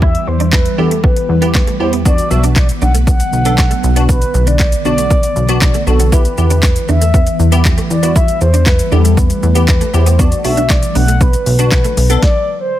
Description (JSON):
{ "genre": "dance-pop", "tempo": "118 BPM", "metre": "4/4", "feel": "straight", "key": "E minor", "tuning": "A4 = 442 Hz", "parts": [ { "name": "mellow horn-like synth lead", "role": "melody", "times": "0.0-12.8 s", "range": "A4 to F#5", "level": "-18 LUFS", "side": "left 1 dB", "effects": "chorus, digital delay" }, { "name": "wavetable chord stab", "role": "accompaniment", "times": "0.0-12.2 s", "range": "B3 to A4", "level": "-22 LUFS", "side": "left 2 dB", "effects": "sidechain pumping" }, { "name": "ethereal airy pad", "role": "sustained chords", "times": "0.0-12.2 s", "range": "D3 to B3", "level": "-21 LUFS", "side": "equal", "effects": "ensemble chorus, built-in reverb, phaser, sidechain pumping" }, { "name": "direct-recorded clean electric guitar", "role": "riff", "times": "0.0-12.2 s", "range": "A3 to E4", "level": "-24 LUFS", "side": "right 6 dB", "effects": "ensemble chorus" }, { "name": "plucky analog bass", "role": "bass", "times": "0.0-12.2 s", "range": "B1 to E2", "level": "-13 LUFS", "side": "equal", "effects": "sidechain pumping" }, { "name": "punchy analog drum machine", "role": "drums", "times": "0.0-12.3 s", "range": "handclaps, hi-hat, kick drum, shaker, snare drum", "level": "-14 LUFS", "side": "equal", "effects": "overdrive" } ], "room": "digital ambience", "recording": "none", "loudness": "-10 LUFS", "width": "side -13 dB against mid", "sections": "0.0-12.8 A section", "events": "stop 12.2-12.8", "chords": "0.0 Em; 2.1 Bm; 6.1 Em; 10.2 Bm" }